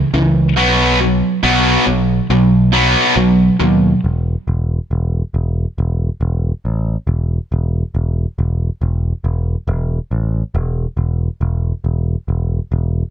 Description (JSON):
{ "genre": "post-rock", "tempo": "69 BPM", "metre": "4/4", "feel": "straight", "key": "unclear", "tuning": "A4 = 440 Hz", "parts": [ { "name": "distorted electric guitar", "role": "riff", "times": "0.0-4.0 s", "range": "B2 to B3", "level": "-12 LUFS", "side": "equal", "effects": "overdrive" }, { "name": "picked electric bass", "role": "bass", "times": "0.0-13.0 s", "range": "E1 to D#2", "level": "-16 LUFS", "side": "equal", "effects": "none" } ], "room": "moderate scoring stage reverb, RT60 1.6 s", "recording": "none", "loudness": "-14 LUFS", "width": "side -11 dB against mid", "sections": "0.0-4.0 A section; 4.0-13.1 B section", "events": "build-up 0.0-4.0", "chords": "0.0 C#m; 0.6 B5; 4.0 N.C." }